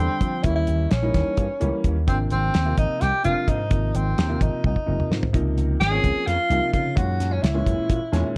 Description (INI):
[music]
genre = electric jazz fusion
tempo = 257 BPM (eighths)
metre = 7/8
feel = straight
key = unclear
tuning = A4 = 440 Hz
[part]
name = mellow tenor saxophone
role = melody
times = 0.0-8.4 s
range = C4 to Ab4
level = -28 LUFS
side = equal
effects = plate reverb
[part]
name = dark baby grand piano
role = accompaniment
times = 0.0-8.4 s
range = Bb2 to Ab5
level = -31 LUFS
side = equal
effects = plate reverb
[part]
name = slap bass with an envelope filter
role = bass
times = 0.0-8.2 s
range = F1 to F3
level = -26 LUFS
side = equal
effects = none
[part]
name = damped 70s drum kit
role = drums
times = 0.2-8.2 s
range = hi-hat, kick drum, snare drum, toms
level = -26 LUFS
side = equal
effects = none
[sound]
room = light reverb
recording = dark, warm production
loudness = -22 LUFS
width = mono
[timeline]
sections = 0.0-8.4 A section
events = drum fill 4.6-5.3; grand piano fill 7.9-8.4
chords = 0.4 Eb7b9; 2.1 Ab6; 3.7 Ab; 5.3 Dbmaj9; 7.0 Gb13